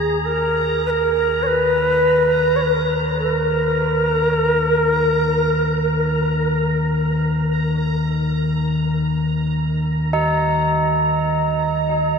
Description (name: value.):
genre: dark ambient drone.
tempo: free time.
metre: none.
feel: none.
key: unclear.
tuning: A4 = 438 Hz.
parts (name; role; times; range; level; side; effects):
breathy shakuhachi; melody; 0.0-6.6 s; Ab4 to Db5; -19 LUFS; equal; diffuse ambient delay.
deep rumbling drone; drone; 0.0-12.2 s; Eb2 to Eb3; -21 LUFS; left 1 dB; built-in reverb.
bubbling stepped-filter texture; texture; 0.0-12.2 s; Bb5; -29 LUFS; right 2 dB; chorus, built-in reverb.
tubular bells; arpeggios; 10.1-12.2 s; Eb4; -18 LUFS; right 2 dB; diffuse ambient delay.
room: wet huge ambient reverb, RT60 8.2 s.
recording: none.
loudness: -16 LUFS.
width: side -6 dB against mid.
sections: 0.0-12.2 A section.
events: fade-out on synth texture 0.0-12.2.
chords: 0.0 Eb5.